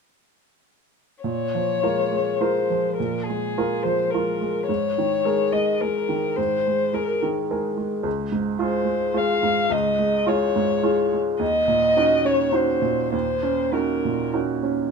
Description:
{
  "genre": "neoclassical piano and strings",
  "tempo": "106 BPM",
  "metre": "3/4",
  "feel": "rubato",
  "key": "Bb minor",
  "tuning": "A4 = 441 Hz",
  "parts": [
    { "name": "muted violin", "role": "melody", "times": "1.2-14.3 s", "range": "Ab4 to F5", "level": "-23 LUFS", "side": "left 3 dB", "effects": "none" },
    { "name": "clear upright piano", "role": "accompaniment", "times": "1.2-14.9 s", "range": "Db2 to Bb4", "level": "-23 LUFS", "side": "right 2 dB", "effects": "none" }
  ],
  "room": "light reverb",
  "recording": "minimal, uncompressed stereo recording",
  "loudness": "-20 LUFS",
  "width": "side -5 dB against mid",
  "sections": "1.3-14.9 A section",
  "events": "none",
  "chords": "1.3 Bbm7; 4.7 Absus2; 8.1 Db; 11.4 Ebm7",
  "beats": "| 1.25 1.83 2.40 | 2.97 3.54 4.11 | 4.68 5.25 5.81 | 6.38 6.94 7.50 | 8.06 8.61 9.17 | 9.72 10.28 10.84 | 11.41 11.98 12.55 | 13.13 13.73 14.34"
}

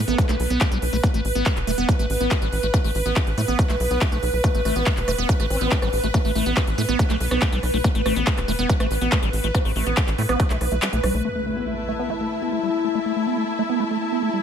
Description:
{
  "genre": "psychedelic trance",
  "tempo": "141 BPM",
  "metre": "4/4",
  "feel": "straight",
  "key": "unclear",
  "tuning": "A4 = 440 Hz",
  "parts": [
    { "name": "evolving wavetable pad", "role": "sustained chords", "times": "0.0-14.4 s", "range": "E4 to B4", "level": "-27 LUFS", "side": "equal", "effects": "ensemble chorus, built-in reverb, sidechain pumping" },
    { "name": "tight sequencer bass", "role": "bass", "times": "0.0-11.2 s", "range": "E1 to A2", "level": "-24 LUFS", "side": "equal", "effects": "none" },
    { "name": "vowel-sweep wobble bass", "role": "second line", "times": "0.1-0.4, 5.5-5.9 s", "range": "A3 to C4", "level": "-37 LUFS", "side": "left 1 dB", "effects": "none" },
    { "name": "liquid acid bass", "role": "riff", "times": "0.1-14.4 s", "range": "G3 to B3", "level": "-26 LUFS", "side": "moving between left 6 dB and right 6 dB", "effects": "phaser, auto-pan, sidechain pumping, digital delay" },
    { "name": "big-room dance drum kit", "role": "drums", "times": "0.1-11.2 s", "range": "handclaps, hi-hat, rim click", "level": "-28 LUFS", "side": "equal", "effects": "low-pass filter on hats, low-pass filter on snare, low-pass filter on cymbals, low-pass filter on room" },
    { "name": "electronic kick drum", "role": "drums", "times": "0.2-10.5 s", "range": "none", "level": "-21 LUFS", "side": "equal", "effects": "none" },
    { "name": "impact", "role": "sound effects", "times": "11.2-12.9 s", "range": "none", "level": "-35 LUFS", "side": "equal", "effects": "none" },
    { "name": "warm studio string section", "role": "texture", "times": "11.2-14.4 s", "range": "A3 to A5", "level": "-28 LUFS", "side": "left 2 dB", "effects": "sidechain pumping" }
  ],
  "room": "light reverb, digital ambience",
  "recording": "none",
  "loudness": "-19 LUFS",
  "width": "side -8 dB against mid",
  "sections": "0.0-11.2 A section; 11.2-14.4 B section",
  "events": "kick drops out 10.8-11.2; impact 11.2-12.9; filter sweep on ambient pad 11.2-14.4",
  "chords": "0.0 A5",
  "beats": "0.18 0.61 | 1.03 1.46 1.89 2.31 | 2.74 3.16 3.59 4.01 | 4.44 4.87 5.29 5.72 | 6.14 6.57 6.99 7.42 | 7.84 8.27 8.70 9.12 | 9.55 9.97 10.40 10.82 | 11.25 11.67 12.10 12.53 | 12.95 13.38 13.80 14.23"
}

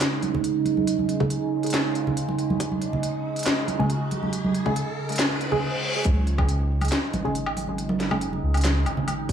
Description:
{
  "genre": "deep dubstep",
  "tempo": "139 BPM",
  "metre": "4/4",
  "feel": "half-time",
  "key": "unclear",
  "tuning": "A4 = 444 Hz",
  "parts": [
    { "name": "overtone-sweeping drone", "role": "sustained chords", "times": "0.0-9.3 s", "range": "C#3 to D#4", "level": "-28 LUFS", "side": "right 4 dB", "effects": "chorus, built-in reverb" },
    { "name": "garage drum kit", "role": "drums", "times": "0.0-9.3 s", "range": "handclaps, hi-hat, snare drum, woodblock", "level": "-28 LUFS", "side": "left 1 dB", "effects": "none" },
    { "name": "riser and reverse cymbal", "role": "sound effects", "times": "2.3-6.1 s", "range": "none", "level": "-34 LUFS", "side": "left 1 dB", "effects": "none" },
    { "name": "congas", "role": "percussion", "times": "0.2-9.2 s", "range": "none", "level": "-29 LUFS", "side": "right 3 dB", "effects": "dub echo" },
    { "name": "filtered dub chord stab", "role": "stabs", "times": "0.3-8.3 s", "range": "C#3 to G#4", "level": "-29 LUFS", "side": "left 1 dB", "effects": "phaser, dub echo" },
    { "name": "electronic kick drum", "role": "drums", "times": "1.2-6.5, 9.3 s", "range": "none", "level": "-25 LUFS", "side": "equal", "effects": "high-pass filter on kick, high-pass filter on room" },
    { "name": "dark detuned saw bass", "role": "bass", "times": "6.1-9.3 s", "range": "G#1 to C#2", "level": "-25 LUFS", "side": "equal", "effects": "none" }
  ],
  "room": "moderate spring reverb, RT60 1.9 s",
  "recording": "small room ambience",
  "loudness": "-22 LUFS",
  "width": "side -8 dB against mid",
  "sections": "0.0-6.1 A section; 6.1-9.3 B section",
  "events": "build-up 0.0-6.1; filter sweep on synth stab 0.0-6.1; riser 2.3-6.1; reverse cymbal 5.2-6.1; break 5.6-6.1; drop 6.1-9.3",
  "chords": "0.0 C#5",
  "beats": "0.01 0.44 | 0.88 1.31 1.74 2.17 | 2.60 3.03 3.47 3.90 | 4.33 4.76 5.19 5.62 | 6.06 6.49 6.92 7.35 | 7.78 8.21 8.64 9.08"
}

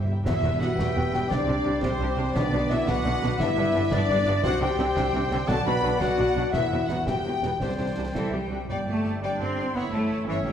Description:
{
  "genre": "cinematic, heroic adventure film score",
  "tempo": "114 BPM (dotted quarters)",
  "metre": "6/8",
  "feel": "straight",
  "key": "E minor",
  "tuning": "A4 = 439 Hz",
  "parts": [
    { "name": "clear symphonic violin section", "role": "melody", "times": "0.0-10.5 s", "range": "C5 to B5", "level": "-34 LUFS", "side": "left 2 dB", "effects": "none" },
    { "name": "warm symphonic violin section", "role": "second line", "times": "0.0-10.5 s", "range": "C5 to C6", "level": "-36 LUFS", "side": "left 4 dB", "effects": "none" },
    { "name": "clear symphonic viola section", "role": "accompaniment", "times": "0.0-10.5 s", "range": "B3 to A4", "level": "-35 LUFS", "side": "right 1 dB", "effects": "none" },
    { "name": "clear symphonic double bass section", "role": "bass", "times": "0.0-10.5 s", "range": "E1 to C2", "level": "-31 LUFS", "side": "right 2 dB", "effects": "none" },
    { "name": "rich symphonic cello section", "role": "bass", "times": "0.0-10.5 s", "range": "C2 to C4", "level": "-31 LUFS", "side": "right 1 dB", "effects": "none" },
    { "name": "timpani", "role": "percussion", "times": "0.0-2.8, 5.5-9.2 s", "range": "E2 to B2", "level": "-34 LUFS", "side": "equal", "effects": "none" },
    { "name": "clear trombone section", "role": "sustained chords", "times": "0.1-10.5 s", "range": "D3 to D4", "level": "-36 LUFS", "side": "right 3 dB", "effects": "none" },
    { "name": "mellow French horn section", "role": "sustained chords", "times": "0.1-10.5 s", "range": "C4 to B4", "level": "-29 LUFS", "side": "left 3 dB", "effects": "none" },
    { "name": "hollow small flute group", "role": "second line", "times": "0.2-10.5 s", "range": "C5 to C6", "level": "-34 LUFS", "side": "left 4 dB", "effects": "none" },
    { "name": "bright clarinet", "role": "second line", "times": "0.3-10.5 s", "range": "B4 to E5", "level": "-36 LUFS", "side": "equal", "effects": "none" },
    { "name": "warm oboe", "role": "second line", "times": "0.3-10.5 s", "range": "D5 to G5", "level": "-36 LUFS", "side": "right 2 dB", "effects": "none" },
    { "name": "concert snare drum, clash cymbals and concert bass drum", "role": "drums", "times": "0.3-8.3 s", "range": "none", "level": "-34 LUFS", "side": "right 1 dB", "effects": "none" }
  ],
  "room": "wet scoring stage reverb, RT60 1.7 s",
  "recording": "none",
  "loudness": "-22 LUFS",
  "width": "side -9 dB against mid",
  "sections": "0.3-8.7 A section; 8.7-10.5 B section",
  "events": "timpani fill 0.0",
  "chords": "0.3 Emadd9; 1.3 Csus2; 2.4 Bm; 3.4 G; 4.4 Csus2; 5.5 Bm; 6.5 Emadd9; 7.6 Csus2; 8.7 Gsus4; 9.7 A/G",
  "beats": "| 0.26 0.79 | 1.31 1.84 | 2.36 2.88 | 3.40 3.92 | 4.44 4.96 | 5.49 6.01 | 6.54 7.07 | 7.61 8.15 | 8.69 9.22 | 9.75 10.27"
}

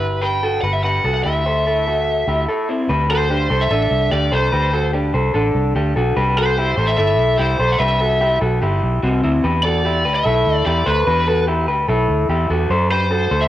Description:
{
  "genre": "jangly indie pop",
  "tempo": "147 BPM",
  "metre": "4/4",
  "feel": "straight",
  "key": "unclear",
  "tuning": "A4 = 437 Hz",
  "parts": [
    { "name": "lead guitar through a small cranked amp", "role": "melody", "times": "0.0-13.5 s", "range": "B4 to G5", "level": "-20 LUFS", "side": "equal", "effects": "overdrive, cassette tape" },
    { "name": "electric guitar through a small old amp", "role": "arpeggios", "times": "0.0-13.5 s", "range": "C4 to C5", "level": "-18 LUFS", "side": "left 1 dB", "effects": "cassette tape" },
    { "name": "vintage muted fingered electric bass", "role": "bass", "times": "0.0-13.5 s", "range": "G1 to F#2", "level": "-20 LUFS", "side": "equal", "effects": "none" }
  ],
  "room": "moderate spring reverb, RT60 1.3 s, digital ambience",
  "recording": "home recording on cassette",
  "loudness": "-15 LUFS",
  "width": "side -13 dB against mid",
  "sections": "0.0-2.9 A section; 2.9-13.5 B section",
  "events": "break 2.5-2.9",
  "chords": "0.0 Gmaj7; 1.2 D9sus4; 2.9 D7sus4; 6.2 C; 9.4 Em7; 12.7 F#dim",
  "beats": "0.02 0.43 0.84 | 1.25 1.66 2.07 2.48 | 2.89 3.30 3.71 4.12 | 4.53 4.93 5.34 5.75 | 6.16 6.57 6.98 7.39 | 7.80 8.21 8.62 9.03 | 9.43 9.84 10.25 10.66 | 11.07 11.48 11.89 12.29 | 12.70 13.11"
}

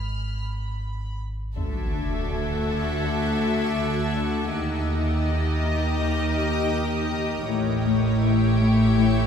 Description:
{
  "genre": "cinematic, suspense film score",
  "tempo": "81 BPM",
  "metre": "4/4",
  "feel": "straight",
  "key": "unclear",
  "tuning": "A4 = 440 Hz",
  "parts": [
    { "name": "deep rumbling drone", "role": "drone", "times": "0.0-9.3 s", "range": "Ab1 to Eb2", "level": "-32 LUFS", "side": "equal", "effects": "built-in reverb" },
    { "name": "rich studio violin section", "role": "texture", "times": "0.0-9.3 s", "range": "C#5 to D7", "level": "-38 LUFS", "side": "equal", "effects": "none" },
    { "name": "warm symphonic violin section", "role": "melody", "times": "1.6-9.3 s", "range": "C#5 to E5", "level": "-33 LUFS", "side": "left 5 dB", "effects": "none" },
    { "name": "warm studio violin section", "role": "second line", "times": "1.6-9.3 s", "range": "G4 to A4", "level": "-33 LUFS", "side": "left 2 dB", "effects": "none" },
    { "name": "dark symphonic viola section", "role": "accompaniment", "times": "1.6-9.3 s", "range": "Eb4 to F#4", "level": "-33 LUFS", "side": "right 2 dB", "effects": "none" },
    { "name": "shimmering ambient pad", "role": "sustained chords", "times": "2.2-9.3 s", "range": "G4 to G5", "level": "-32 LUFS", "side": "left 1 dB", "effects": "chorus, built-in reverb" },
    { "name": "Celtic harp", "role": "riff", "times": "1.6-9.3 s", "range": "A2 to Eb4", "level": "-28 LUFS", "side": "left 6 dB", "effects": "none" },
    { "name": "dark symphonic double bass section", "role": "bass", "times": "1.6-9.3 s", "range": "A1 to Eb2", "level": "-28 LUFS", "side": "right 2 dB", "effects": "none" },
    { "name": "warm symphonic cello section", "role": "bass", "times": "1.6-9.3 s", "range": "D2 to A2", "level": "-26 LUFS", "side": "right 1 dB", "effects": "none" },
    { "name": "sub drop", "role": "sound effects", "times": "1.6-4.5 s", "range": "none", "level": "-31 LUFS", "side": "equal", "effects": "none" }
  ],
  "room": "wet scoring stage reverb, RT60 1.9 s",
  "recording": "minimal, uncompressed stereo recording",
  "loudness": "-22 LUFS",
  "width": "side -7 dB against mid",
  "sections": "0.0-1.6 A section; 1.6-9.3 B section",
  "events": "break 0.0-1.6; impact 1.6-4.5",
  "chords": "0.0 Abm6; 1.6 Dadd9; 4.5 Eb; 7.5 A7",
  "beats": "0.09 0.83 | 1.57 2.31 3.05 3.79 | 4.53 5.28 6.02 6.76 | 7.50 8.24 8.98"
}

